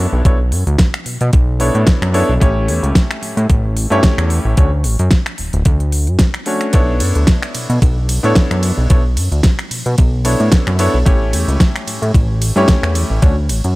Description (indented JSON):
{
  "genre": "nu-disco, nu disco",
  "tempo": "111 BPM",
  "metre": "4/4",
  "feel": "swing 55% on 16ths",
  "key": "B minor",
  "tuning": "A4 = 438 Hz",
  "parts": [
    { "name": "warm electric grand piano", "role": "accompaniment", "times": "0.0-13.3 s", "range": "A3 to C#5", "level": "-19 LUFS", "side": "equal", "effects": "sidechain pumping, tape echo" },
    { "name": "fat analog bass", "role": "bass", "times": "0.0-13.7 s", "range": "D1 to B2", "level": "-15 LUFS", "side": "equal", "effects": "none" },
    { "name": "electronic kick drum", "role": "drums", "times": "0.3-13.3 s", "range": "none", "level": "-12 LUFS", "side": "equal", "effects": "none" },
    { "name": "pop drum kit", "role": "drums", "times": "0.3-13.7 s", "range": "finger snaps, hi-hat, ride cymbal, snare drum", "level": "-20 LUFS", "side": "equal", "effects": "none" }
  ],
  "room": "little or no reverb",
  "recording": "dry, gritty hardware recording",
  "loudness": "-12 LUFS",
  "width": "side -20 dB against mid",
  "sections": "0.0-13.8 A section",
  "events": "none",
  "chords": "0.0 Bm11; 2.4 A7; 4.6 Dmaj7; 6.7 Bm11; 11.1 A7; 13.2 Dmaj7"
}